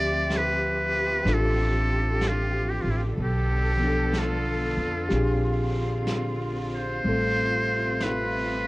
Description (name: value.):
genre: jazz ballad.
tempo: 62 BPM.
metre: 4/4.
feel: swing 66% on 8ths.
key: unclear.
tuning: A4 = 440 Hz.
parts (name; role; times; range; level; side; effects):
trumpet with metal mute; melody; 0.0-8.7 s; E4 to D5; -27 LUFS; equal; cassette tape.
tine electric piano; accompaniment; 0.0-8.7 s; F3 to E5; -30 LUFS; left 2 dB; none.
rich studio cello section; sustained chords; 0.0-8.7 s; C3 to A4; -32 LUFS; equal; none.
upright bass; bass; 0.0-8.7 s; A1 to F2; -27 LUFS; equal; tube saturation.
jazz brush drum kit; drums; 0.3-8.7 s; brushed snare drum, hi-hat, snare drum; -37 LUFS; equal; cassette tape.
room: small room reverb.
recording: home recording on cassette.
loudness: -23 LUFS.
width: side -21 dB against mid.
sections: 0.0-8.7 A section.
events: none.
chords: 0.0 Dm11; 3.2 Bm7b5; 5.1 Bb13; 7.0 Am9.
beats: 0.30 1.26 2.22 | 3.17 4.13 5.10 6.07 | 7.04 8.00.